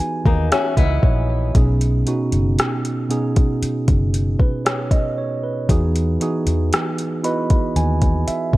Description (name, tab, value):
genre	contemporary R&B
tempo	58 BPM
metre	4/4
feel	straight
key	B major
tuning	A4 = 440 Hz
part	mellow tine electric piano	accompaniment	0.0-8.6 s	B2 to B5	-21 LUFS	right 2 dB	none
part	vintage muted fingered electric bass	bass	0.0-8.6 s	F#1 to E2	-19 LUFS	equal	none
part	flamenco guitar	arpeggios	0.3-1.5 s	A#3 to F#4	-24 LUFS	left 6 dB	tape echo
part	smooth R&B drum kit	drums	0.3-8.6 s	hi-hat, kick drum, rim click	-18 LUFS	equal	none
room	light reverb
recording	worn, warbling old tape, cassette tape, warbly pitch drift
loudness	-16 LUFS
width	side -18 dB against mid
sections	0.0-8.6 A section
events	tine electric piano fill 0.0-1.6, 6.7-8.6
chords	0.0 Emaj7; 1.6 B6; 5.7 Emaj7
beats	0.52 | 1.55 2.58 3.62 4.65 | 5.69 6.72 7.76